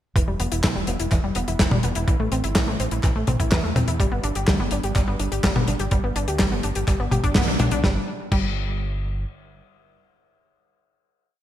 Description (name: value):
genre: italo disco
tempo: 125 BPM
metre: 4/4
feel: straight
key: G major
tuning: A4 = 439 Hz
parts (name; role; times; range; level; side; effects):
- analog pluck; arpeggios; 0.2-8.5 s; E3 to G4; -27 LUFS; left 1 dB; chorus, digital delay
- fingered electric bass with an envelope filter; bass; 0.2-9.2 s; E1 to G2; -26 LUFS; equal; none
- damped 70s drum kit; drums; 0.2-8.5 s; crash cymbal, handclaps, hi-hat, snare drum, toms; -24 LUFS; left 1 dB; gated reverb
- electronic kick drum; drums; 0.2-8.5 s; none; -22 LUFS; equal; none
room: moderate lush hall reverb, RT60 2.3 s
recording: bright 1980s-style digital production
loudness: -20 LUFS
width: side -12 dB against mid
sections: 0.2-7.8 verse; 7.8-11.4 final chord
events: band accent 7.4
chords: 0.2 Em; 2.1 Am; 4.0 G; 7.8 N.C.